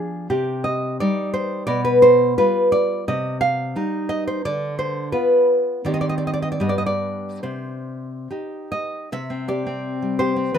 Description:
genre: romantic piece for solo classical guitar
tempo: 67-89 BPM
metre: 2/4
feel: rubato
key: C minor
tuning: A4 = 440 Hz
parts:
  - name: nylon-string guitar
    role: solo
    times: 0.0-10.6 s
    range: G2 to F5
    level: -19 LUFS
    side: equal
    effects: none
room: light reverb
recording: minimal, uncompressed stereo recording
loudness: -18 LUFS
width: side -8 dB against mid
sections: 0.0-9.1 A section; 9.1-10.6 B section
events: none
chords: 0.3 Cm; 1.7 G7/B; 3.1 Cm; 4.4 Bdim/D; 5.9 Cm/Eb; 6.6 G; 7.4 Cm; 9.1 C5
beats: | 0.32 1.02 | 1.70 2.39 | 3.08 3.76 | 4.45 5.13 | 5.85 6.61 | 7.44 8.30 | 9.12 9.86 | 10.57

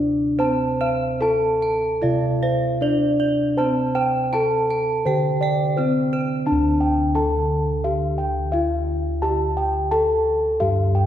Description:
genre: gamelan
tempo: 71-87 BPM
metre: 4/4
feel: straight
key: D slendro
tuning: A4 = 440 Hz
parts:
  - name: gamelan-type bronze metallophone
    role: melody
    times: 0.0-11.1 s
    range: C4-25c to A4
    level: -22 LUFS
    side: left 1 dB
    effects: none
  - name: gamelan-type bossed gongs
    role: arpeggios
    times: 0.0-11.1 s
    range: C5-25c to A5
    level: -25 LUFS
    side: left 1 dB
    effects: none
  - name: gamelan-type bossed gongs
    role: bass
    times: 0.0-11.1 s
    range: D2 to C5-25c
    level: -24 LUFS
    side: right 1 dB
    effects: none
  - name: gamelan-type bronze metallophone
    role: arpeggios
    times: 0.4-6.5 s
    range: C5-25c to A5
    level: -27 LUFS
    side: right 5 dB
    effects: none
room: wet concert hall reverb, RT60 2.0 s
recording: heard from further back in the room, faint mains hum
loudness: -18 LUFS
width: side -10 dB against mid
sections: 0.0-6.5 A section; 6.5-11.1 B section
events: none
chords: none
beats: | 0.39 1.22 2.03 2.82 | 3.59 4.33 5.07 5.78 | 6.48 7.17 7.86 8.55 | 9.24 9.93 10.62

